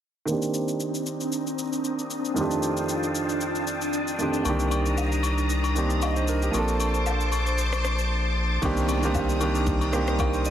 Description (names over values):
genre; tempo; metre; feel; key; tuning
amapiano; 115 BPM; 4/4; swing 55% on 16ths; C dorian; A4 = 442 Hz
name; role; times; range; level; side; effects
clear grand piano; accompaniment; 0.3-10.5 s; F2 to Eb5; -27 LUFS; right 3 dB; low-pass filter
string machine, violins; sustained chords; 0.3-10.5 s; C4 to Eb6; -29 LUFS; left 1 dB; ensemble chorus, sidechain pumping, low-pass filter
smooth R&B drum kit; drums; 0.3-10.5 s; kick drum, rim click, shaker; -34 LUFS; left 2 dB; none
saturated sub bass; bass; 4.5-10.5 s; Bb1 to C2; -26 LUFS; left 1 dB; none
agogo bells and woodblock; percussion; 4.5-10.3 s; none; -34 LUFS; left 6 dB; none
downlifter; sound effects; 8.7-10.5 s; none; -36 LUFS; left 1 dB; none
room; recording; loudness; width
light reverb; none; -23 LUFS; side -10 dB against mid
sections
0.3-8.6 A section; 8.6-10.5 B section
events
filter sweep 0.3-8.6; silent gap 8.1-8.6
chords
0.3 Cm9; 2.4 F13; 4.5 Cm9; 6.5 Bbmaj9; 8.6 Cm9